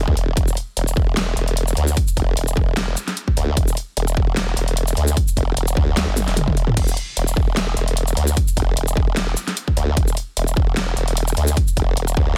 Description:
heavy wobble dubstep; 150 BPM; 4/4; swing 54% on 16ths, half-time; A4 = 440 Hz
formant-sweep wobble bass; bass; 0.0-12.4 s; E1 to D2; -23 LUFS; equal; chorus, overdrive
electronic kick drum; drums; 0.1-12.3 s; -21 LUFS; equal; small room ambience
dubstep drum kit; drums; 0.2-12.2 s; crash cymbal, hi-hat, shaker, snare drum, toms; -26 LUFS; equal; small room ambience
little or no reverb; dense, heavily limited modern master; -20 LUFS; mono
0.0-12.4 A section
drum fill 6.2-6.8

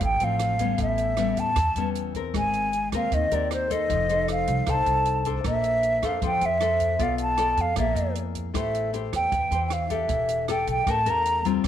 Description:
bossa nova; 155 BPM; 4/4; straight; A4 = 439 Hz
breathy mellow silver concert flute; melody; 0.0-11.5 s; C5 to Bb5; -24 LUFS; right 1 dB; slapback echo
nylon-string guitar; accompaniment; 0.0-11.7 s; A2 to D5; -29 LUFS; left 10 dB
upright bass; bass; 0.0-11.7 s; E1 to F2; -30 LUFS; right 1 dB
compact cocktail drum kit; drums; 0.0-11.7 s; hi-hat, kick drum, rim click; -34 LUFS; right 4 dB
light reverb, small room ambience; 1960s-style stereo; -22 LUFS; side -10 dB against mid
0.0-11.7 A section
0.0 Dm7 (rootless); 0.8 A9; 2.3 Abmaj9; 3.9 F7; 5.4 Bbmaj9; 7.0 Bm7b5; 7.8 Bb7#11; 8.5 Am7; 10.1 Em7; 10.9 A7b9

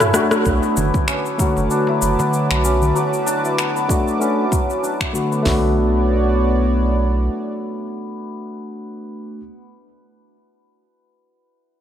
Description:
organic downtempo; 96 BPM; 4/4; swing 56% on 16ths; B minor; A4 = 442 Hz
warm analog pad; sustained chords; 0.0-8.7 s; B3 to D6; -24 LUFS; right 2 dB; chorus, sidechain pumping
santur; arpeggios; 0.0-9.6 s; F#3 to B4; -23 LUFS; left 2 dB; low-pass filter, tape echo
deep house drum kit; drums; 0.0-5.4 s; finger snaps, rim click, shaker, toms; -22 LUFS; left 1 dB; overdrive
tine electric piano; accompaniment; 0.1-9.4 s; D3 to F#4; -22 LUFS; left 2 dB; sidechain pumping, tape echo
warm sub bass; bass; 0.5-7.3 s; F#1 to B1; -19 LUFS; equal; tube saturation
deep house drum kit; drums; 0.5-5.6 s; hi-hat, kick drum, snare drum, toms; -21 LUFS; right 1 dB; overdrive
darbuka; percussion; 0.6-2.9 s; -27 LUFS; right 1 dB
moderate lush hall reverb, RT60 1.6 s; -16 LUFS; side -9 dB against mid
0.5-5.5 A section; 5.5-8.0 B section
break 0.0-0.5; drum fill 0.0-0.5; band accent 0.3-0.6; filter sweep on santur 0.5-5.5
0.0 F#m; 5.5 Bm7

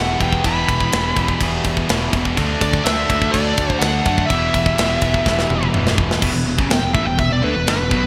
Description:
heavy metal; 125 BPM; 4/4; straight; E minor; A4 = 440 Hz
smooth overdriven lead guitar; melody; 0.0-8.1 s; B4 to B5; -24 LUFS; equal
dark analog pad; sustained chords; 0.0-8.1 s; E3 to B5; -36 LUFS; equal
heavy high-gain guitar; riff; 0.0-8.1 s; E2 to D4; -25 LUFS; equal; distortion
high-gain distorted guitar; riff; 0.0-8.1 s; E2 to G4; -29 LUFS; equal
sludgy distorted guitar; riff; 0.0-8.1 s; E2 to D4; -28 LUFS; equal
modern bright picked electric bass; bass; 0.0-8.1 s; E1 to F#2; -26 LUFS; equal
tight metal drum kit; drums; 0.2-8.0 s; china cymbal, crash cymbal, kick drum, ride cymbal, snare drum, toms; -23 LUFS; equal; gated reverb
moderate lush hall reverb, RT60 1.8 s, small room ambience; bright 1980s-style digital production; -18 LUFS; mono
0.0-6.2 A section; 6.2-8.1 B section
drum fill 5.3-6.2; lead electric guitar solo 6.2-8.1
0.0 Em; 2.4 D; 4.3 Em

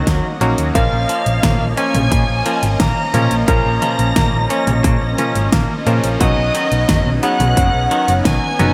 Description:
synthwave; 88 BPM; 4/4; straight; A4 = 435 Hz
smooth overdriven lead guitar; melody; 0.0-8.7 s; D#5 to Bb5; -23 LUFS; equal; tape echo
string machine, violins; second line; 0.0-8.7 s; D#6 to Bb6; -31 LUFS; equal; ensemble chorus, digital delay
phased analog pad; sustained chords; 0.0-8.7 s; Eb3 to Eb5; -26 LUFS; equal; phaser, chorus, sidechain pumping
twangy electric guitar; arpeggios; 0.0-8.7 s; Db3 to Db4; -28 LUFS; equal; digital delay
clear electric grand piano; stabs; 0.0-8.7 s; F3 to Db5; -24 LUFS; equal
hollow-body short-scale picked electric bass; bass; 0.1-8.7 s; F#1 to Bb2; -20 LUFS; equal
electronic kick drum; drums; 0.1-8.4 s; -21 LUFS; equal
pop drum kit; drums; 0.1-8.7 s; hi-hat, snare drum, toms; -23 LUFS; equal; gated reverb
moderate lush hall reverb, RT60 2.8 s; -16 LUFS; mono
0.0-8.7 A section
0.0 Ebm7; 0.8 Bbm; 6.2 Badd9

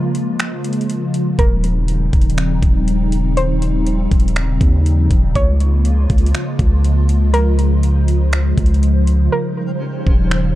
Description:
hip hop, atmospheric cloud-rap; 121 BPM; 4/4; half-time; Db lydian; A4 = 444 Hz
hollow soft pad; sustained chords; 0.0-10.6 s; Db3 to C5; -20 LUFS; equal; ensemble chorus, sidechain pumping
trap drum kit; drums; 0.1-10.4 s; finger snaps, hi-hat, kick drum; -16 LUFS; equal; vintage 12-bit sampler grit
soft round pluck; melody; 1.4-10.6 s; Bb4 to Db5; -24 LUFS; equal; chorus, tape echo
long sustained 808-style bass; bass; 1.4-10.5 s; Eb1 to Eb2; -15 LUFS; equal
twinkling granular texture; texture; 9.7-10.6 s; Db4 to F5; -31 LUFS; right 2 dB; built-in reverb
digital ambience; dark, warm production; -13 LUFS; side -15 dB against mid
0.0-10.6 A section
break 0.0-1.4, 9.3-10.6
0.0 Db6; 1.4 Eb13; 5.4 Db6; 9.3 Eb13

